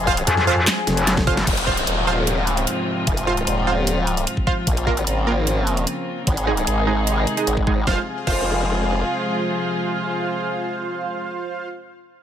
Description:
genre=heavy wobble dubstep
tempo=150 BPM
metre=4/4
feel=half-time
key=F minor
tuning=A4 = 444 Hz
part: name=dark studio string section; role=sustained chords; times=0.0-11.3 s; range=Ab2 to Ab4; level=-25 LUFS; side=left 2 dB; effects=sidechain pumping, low-pass filter
part: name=formant-sweep wobble bass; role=bass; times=0.0-9.0 s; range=Eb1 to Bb1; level=-22 LUFS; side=equal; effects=chorus, overdrive
part: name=supersaw stab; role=stabs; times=0.1-11.7 s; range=Ab3 to F5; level=-25 LUFS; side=right 4 dB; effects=low-pass filter, ping-pong delay
part: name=electronic kick drum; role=drums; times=0.1-8.4 s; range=none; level=-22 LUFS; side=equal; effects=none
part: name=dubstep drum kit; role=drums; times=0.2-8.4 s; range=crash cymbal, handclaps, hi-hat, snare drum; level=-24 LUFS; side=equal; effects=none
part: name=metallic wobble bass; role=bass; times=0.3-1.5 s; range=F1 to F2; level=-19 LUFS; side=equal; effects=chorus, overdrive
part: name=downlifter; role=sound effects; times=1.5-4.7 s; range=none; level=-27 LUFS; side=equal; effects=none
room=light reverb, digital ambience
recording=none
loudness=-18 LUFS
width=side -10 dB against mid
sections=0.0-1.5 A section; 1.5-7.9 B section; 7.9-11.1 C section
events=drop 0.0-1.5; drum fill 0.9-1.5; band accent 1.4; filter sweep on supersaw synth 1.5-7.9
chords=0.0 Fm; 4.7 Bbmadd9; 6.3 Ab; 7.9 Fm

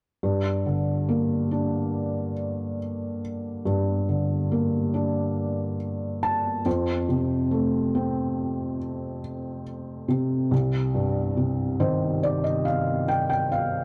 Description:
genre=pop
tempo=70 BPM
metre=4/4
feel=straight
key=G minor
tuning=A4 = 440 Hz
part: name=felt-muted upright piano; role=accompaniment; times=0.2-13.8 s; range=C2 to A5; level=-26 LUFS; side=equal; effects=none
room=light reverb, small room ambience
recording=dry, close 1970s-style studio recording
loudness=-26 LUFS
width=mono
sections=0.2-13.8 A section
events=felt piano fill 5.8-7.1, 11.4-13.8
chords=0.2 Gm; 6.7 F; 10.5 Cm

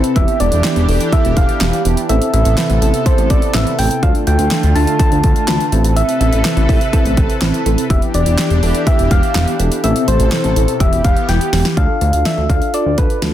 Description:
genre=synth-pop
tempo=124 BPM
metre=4/4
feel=straight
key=A minor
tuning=A4 = 440 Hz
part: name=soft struck synth lead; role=melody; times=0.0-13.3 s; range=B4 to A5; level=-20 LUFS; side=left 1 dB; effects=chorus, tape echo
part: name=soft electric-piano-like synth keys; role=accompaniment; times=0.0-13.3 s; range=B3 to B4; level=-21 LUFS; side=right 1 dB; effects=chorus, phaser
part: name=lush unison pad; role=sustained chords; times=0.0-11.8 s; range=B2 to B4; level=-22 LUFS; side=equal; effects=chorus, phaser
part: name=pop drum kit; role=drums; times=0.0-13.3 s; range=handclaps, hi-hat, kick drum, snare drum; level=-16 LUFS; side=equal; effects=none
part: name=chorused synth bass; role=bass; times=0.2-13.3 s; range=E1 to D2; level=-15 LUFS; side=equal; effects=none
room=light reverb, digital ambience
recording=dense, heavily limited modern master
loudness=-12 LUFS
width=side -12 dB against mid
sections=0.0-11.8 A section; 11.8-13.3 B section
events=drum fill 11.3-11.8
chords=0.2 Em7; 2.1 Amadd9; 4.0 Dm; 5.7 Amadd9; 7.9 Em7; 9.8 Amadd9; 10.8 Em; 11.8 Dm

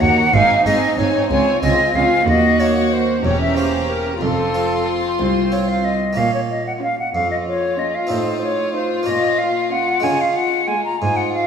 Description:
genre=classical, baroque-style concerto movement with solo episodes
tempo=62 BPM (dotted quarters)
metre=6/8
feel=straight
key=Bb minor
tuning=A4 = 440 Hz
part: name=bright concert flute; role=melody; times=0.0-11.5 s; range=A4 to Bb5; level=-19 LUFS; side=equal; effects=none
part: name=rich chamber violin section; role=melody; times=0.0-10.9 s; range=F4 to C6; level=-31 LUFS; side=left 4 dB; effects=none
part: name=rich chamber violin section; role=second line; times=0.0-11.5 s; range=Eb4 to G4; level=-23 LUFS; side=left 3 dB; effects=none
part: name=harpsichord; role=accompaniment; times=0.0-11.5 s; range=C2 to Bb4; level=-24 LUFS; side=right 1 dB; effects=none
part: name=rich studio viola section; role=accompaniment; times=0.0-10.9 s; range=Ab3 to Eb4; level=-23 LUFS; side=right 3 dB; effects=none
part: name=warm chamber cello section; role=bass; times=0.0-11.5 s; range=C2 to Db3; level=-25 LUFS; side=right 4 dB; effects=none
part: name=warm chamber double bass section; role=bass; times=0.0-6.1 s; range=E1 to Eb2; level=-25 LUFS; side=right 3 dB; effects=none
room=wet concert hall reverb, RT60 2.0 s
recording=studio reverb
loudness=-15 LUFS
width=side -7 dB against mid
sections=0.0-6.2 A section; 6.2-11.5 A section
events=none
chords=0.3 Ab; 1.3 Dbmaj7; 2.3 Ebm; 3.2 Edim7; 4.2 F; 6.2 Bbm; 8.1 F7/A; 9.1 Bbm; 10.0 Db

